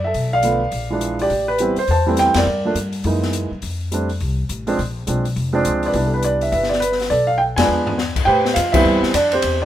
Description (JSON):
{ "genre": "jazz piano trio", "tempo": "207 BPM", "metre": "4/4", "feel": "swing 61% on 8ths", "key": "unclear", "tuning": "A4 = 441 Hz", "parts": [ { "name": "warm upright piano", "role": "melody", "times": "0.0-9.7 s", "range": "D3 to A5", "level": "-17 LUFS", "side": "right 2 dB", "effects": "none" }, { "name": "upright bass", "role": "bass", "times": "0.0-9.7 s", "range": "F1 to A2", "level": "-23 LUFS", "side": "left 1 dB", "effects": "none" }, { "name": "open jazz drum kit", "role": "drums", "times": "0.1-9.5 s", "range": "crash cymbal, hi-hat, kick drum, ride cymbal, snare drum, toms", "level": "-24 LUFS", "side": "left 4 dB", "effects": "none" } ], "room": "light reverb", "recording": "minimal, uncompressed stereo recording", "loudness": "-16 LUFS", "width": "side -12 dB against mid", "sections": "0.0-8.3 A section; 8.3-9.7 B section", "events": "band accent 2.3, 7.5, 8.7; drum fill 7.4-8.0", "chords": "0.1 Bm7b5; 0.7 Bb7#11; 1.3 Am9; 2.5 Gm; 3.0 F#13; 3.6 F6; 4.8 Bb9; 5.9 Cmaj7; 7.1 Bm7b5; 7.7 E7b9; 8.3 Am9" }